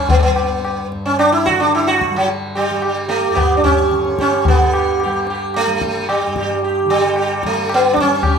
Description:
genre	indian classical, Hindustani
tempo	110 BPM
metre	4/4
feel	straight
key	G raga yaman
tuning	A4 = 440 Hz
part	sitar	melody	0.0-8.4 s	F#3 to G4	-15 LUFS	right 2 dB	none
part	tanpura	drone	0.0-8.4 s	G2 to G3	-26 LUFS	left 1 dB	none
part	tabla	percussion	0.1-8.4 s	none	-20 LUFS	left 3 dB	none
room	moderate recital hall reverb, RT60 1.4 s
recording	minimal, uncompressed stereo recording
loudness	-14 LUFS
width	side -6 dB against mid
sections	0.0-4.5 A section; 4.5-8.4 B section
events	none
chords	none

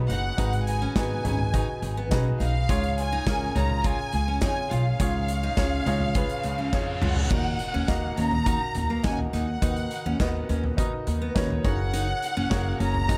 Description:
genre	piano-driven pop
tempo	104 BPM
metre	4/4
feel	straight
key	Eb minor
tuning	A4 = 440 Hz
part	warm grand piano	accompaniment	0.0-13.2 s	Ab2 to Gb5	-35 LUFS	equal	dub echo
part	upright bass	bass	0.0-13.2 s	Gb1 to F2	-29 LUFS	equal	none
part	warm symphonic violin section	melody	0.1-13.2 s	F5 to Bb5	-33 LUFS	equal	dub echo
part	picked steel-string acoustic guitar	riff	0.1-13.2 s	Bb3 to F4	-37 LUFS	equal	dub echo
part	loose indie drum kit	drums	0.1-13.2 s	crash cymbal, hi-hat, kick drum, snare drum, toms	-31 LUFS	equal	none
part	reverse cymbal and impact	sound effects	6.4-9.6 s	none	-41 LUFS	equal	none
room	light reverb, studio ambience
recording	echo-heavy mix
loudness	-26 LUFS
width	mono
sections	0.0-7.3 A section; 7.3-13.2 B section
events	reverse cymbal 6.4-7.3; drum fill 6.7-7.3; impact 7.3-9.6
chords	0.0 Abm7; 2.7 Db; 7.3 Ebm; 9.6 Bmaj7/D#; 11.6 Gbadd9

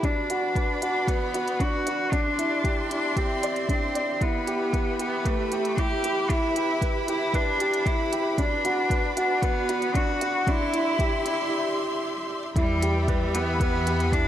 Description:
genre	piano and strings electronica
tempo	115 BPM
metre	4/4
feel	straight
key	E minor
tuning	A4 = 440 Hz
part	bright cello	melody	0.0-14.3 s	G3 to G4	-27 LUFS	equal	low-pass filter, tape echo
part	warm symphonic string section	sustained chords	0.0-14.3 s	F#4 to C6	-33 LUFS	equal	sidechain pumping
part	dark grand piano	riff	0.0-14.3 s	D4 to D5	-28 LUFS	equal	none
part	dark detuned saw bass	bass	0.0-14.3 s	E2	-34 LUFS	equal	sidechain pumping, high-pass filter
part	electronic kick drum	drums	0.0-14.2 s	none	-26 LUFS	equal	overdrive
part	organic electronic drum kit	drums	0.0-14.2 s	hi-hat, toms	-37 LUFS	right 2 dB	high-pass filter on hats, high-pass filter on toms, high-pass filter on room
room	moderate echo chamber reverb, RT60 1.7 s, studio ambience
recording	none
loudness	-23 LUFS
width	side -11 dB against mid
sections	0.0-12.6 A section; 12.6-14.3 B section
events	build-up 0.0-12.6; filter sweep on cello 0.0-12.6; break 11.5-12.6; drum fill 12.2-12.6; drop 12.6-14.3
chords	0.0 Bm/E; 2.1 Cadd9/E; 4.2 Em; 8.4 Bm/E; 10.5 Cadd9/E; 12.6 Em

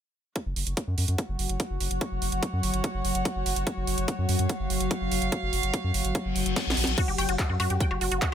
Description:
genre	psychedelic trance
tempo	145 BPM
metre	4/4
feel	straight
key	unclear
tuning	A4 = 440 Hz
part	evolving wavetable pad	sustained chords	1.0-8.3 s	F#3 to F#4	-32 LUFS	equal	phaser, built-in reverb, sidechain pumping
part	drum and bass drum kit	drums	0.4-8.3 s	crash cymbal, handclaps, hi-hat, snare drum, woodblock	-31 LUFS	right 3 dB	overdrive, small room ambience
part	electronic kick drum	drums	0.4-8.3 s	none	-28 LUFS	equal	overdrive, high-pass filter on kick, small room ambience
part	rich chamber string section	texture	0.4-7.0 s	F#4 to F#5	-36 LUFS	equal	sidechain pumping
part	round analog bass	bass	0.5-8.2 s	F#1 to F#2	-29 LUFS	equal	none
part	reverse cymbal	sound effects	6.3-7.0 s	none	-32 LUFS	left 6 dB	none
part	wide unison pluck	riff	7.0-8.3 s	F#4 to G5	-30 LUFS	moving between left 4 dB and right 3 dB	auto-pan, vintage 12-bit sampler grit, sidechain pumping, ping-pong delay
room	digital ambience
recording	none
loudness	-25 LUFS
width	side -9 dB against mid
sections	0.4-7.0 A section; 7.0-8.3 B section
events	fade-in on string section 0.4-7.0; reverse cymbal 6.3-7.0; drum fill 6.6-7.0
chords	0.4 F#5

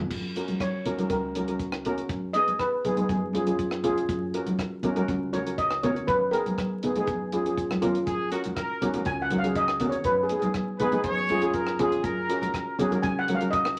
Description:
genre	calypso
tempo	121 BPM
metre	4/4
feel	straight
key	F# major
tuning	A4 = 439 Hz
part	steel pan	accompaniment	0.0-13.6 s	B3 to A#4	-31 LUFS	equal	none
part	upright bass	bass	0.0-13.8 s	C#2 to F#2	-38 LUFS	equal	none
part	deep reggae drum kit	drums	0.1-13.8 s	crash cymbal, hi-hat, kick drum, rim click	-38 LUFS	equal	none
part	congas	percussion	0.5-13.4 s	none	-33 LUFS	equal	none
part	steel pan	melody	0.6-13.8 s	G#4 to G#5	-29 LUFS	equal	none
part	warm horn section	second line	8.1-12.9 s	F#4 to C#5	-32 LUFS	equal	none
room	wet small room reverb, RT60 0.5 s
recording	vinyl crackle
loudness	-27 LUFS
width	mono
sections	0.1-13.8 A section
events	steel pan solo 0.1-13.8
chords	0.1 F#; 2.1 G#m/F#; 3.1 C#/F#; 4.1 F#; 6.1 G#m/F#; 7.1 C#/F#; 8.1 F#; 10.1 G#m/F#; 11.1 C#/F#; 12.0 F#

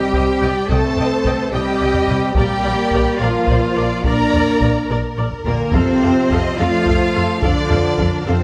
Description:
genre	cinematic, epic orchestral film score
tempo	72 BPM (dotted quarters)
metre	12/8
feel	straight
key	unclear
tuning	A4 = 440 Hz
part	rich studio violin section	melody	0.0-8.4 s	Bb4 to Bb5	-30 LUFS	equal	none
part	warm symphonic violin section	second line	0.0-8.4 s	A4 to Eb5	-30 LUFS	equal	none
part	clear trombone section	sustained chords	0.0-8.4 s	Bb2 to Bb3	-26 LUFS	equal	none
part	mellow French horn section	sustained chords	0.0-8.4 s	D3 to D4	-25 LUFS	equal	none
part	rich symphonic cello section	bass	0.0-8.4 s	Bb3 to Bb4	-22 LUFS	equal	none
part	warm studio viola section	accompaniment	0.1-8.3 s	A4 to G5	-29 LUFS	equal	none
part	warm chamber double bass section	bass	0.1-8.3 s	Bb1 to F2	-24 LUFS	equal	none
part	taiko ensemble	drums	0.1-8.4 s	none	-25 LUFS	equal	none
room	moderate scoring stage reverb, RT60 1.9 s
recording	none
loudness	-17 LUFS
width	mono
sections	0.0-8.4 A section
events	none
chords	0.0 Cm; 2.4 Bb; 5.7 F

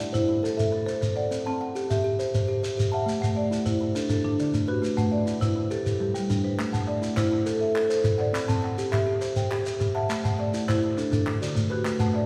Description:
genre	southern african traditional, mbira-style interlocking cycle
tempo	137 BPM (dotted quarters)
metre	12/8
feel	straight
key	A dorian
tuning	A4 = 441 Hz
part	kalimba	arpeggios	0.0-12.3 s	D3 to A5	-30 LUFS	equal	none
part	marimba with medium hard mallets	arpeggios	0.0-12.3 s	D3 to G5	-31 LUFS	equal	none
part	shekere	percussion	0.0-12.1 s	none	-31 LUFS	equal	none
part	group handclap	percussion	6.6-12.2 s	none	-40 LUFS	equal	none
room	wet recital hall reverb, RT60 1.7 s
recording	recorded in a church or concert hall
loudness	-26 LUFS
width	mono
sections	0.0-12.3 A section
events	none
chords	0.0 Am; 1.3 C; 3.1 Am; 4.0 D; 4.8 Am; 5.7 G; 6.6 Am; 8.3 C; 10.1 Am; 11.0 D

